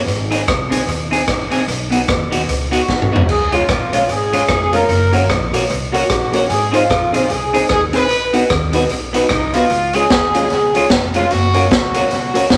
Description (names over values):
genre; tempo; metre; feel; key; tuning
ska; 150 BPM; 4/4; swing 60% on 8ths; Db major; A4 = 440 Hz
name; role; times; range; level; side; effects
upright bass; bass; 0.1-12.6 s; F1 to Eb2; -25 LUFS; equal; none
raw garage drum kit; drums; 0.1-12.6 s; crash cymbal, hi-hat, kick drum, rim click, snare drum, toms; -20 LUFS; equal; dub echo
clean electric guitar; accompaniment; 0.3-12.4 s; Ab3 to Ab4; -23 LUFS; equal; phaser, dub echo
warm horn section; melody; 2.7-12.6 s; Eb4 to Cb5; -20 LUFS; equal; none
dark upright piano; stabs; 3.5-12.4 s; Eb4 to Db5; -23 LUFS; equal; none
room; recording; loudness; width
moderate studio reverb, RT60 1.0 s; none; -16 LUFS; mono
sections
0.0-12.6 A section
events
drum fill 2.9-3.3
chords
0.1 Ab; 1.7 Cb; 3.3 Db; 4.9 Gb; 6.5 Ab; 8.1 Cb; 9.7 Db; 11.3 Gb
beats
| 0.08 0.48 0.88 1.28 | 1.68 2.08 2.48 2.89 | 3.29 3.69 4.09 4.49 | 4.89 5.29 5.70 6.10 | 6.50 6.90 7.30 7.70 | 8.10 8.50 8.90 9.31 | 9.71 10.11 10.51 10.91 | 11.31 11.71 12.11 12.51